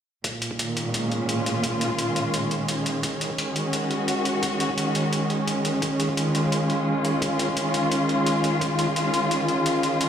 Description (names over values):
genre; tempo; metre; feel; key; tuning
half-time drum and bass; 172 BPM; 4/4; swing 53% on 16ths, half-time; unclear; A4 = 438 Hz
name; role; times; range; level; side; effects
muted studio string section; sustained chords; 0.2-10.1 s; Bb2 to Gb4; -22 LUFS; equal; sidechain pumping
electronic hi-hat; drums; 0.2-10.1 s; none; -29 LUFS; left 1 dB; none
electronic kick drum; drums; 0.2-8.9 s; none; -37 LUFS; equal; high-pass filter on kick, high-pass filter on room
room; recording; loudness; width
light reverb, digital ambience; played on a big sound system in a bare room, stone room reverb; -22 LUFS; side -8 dB against mid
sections
0.2-10.1 A section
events
none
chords
0.2 Bbm; 3.0 Ebm; 5.8 Eb9sus4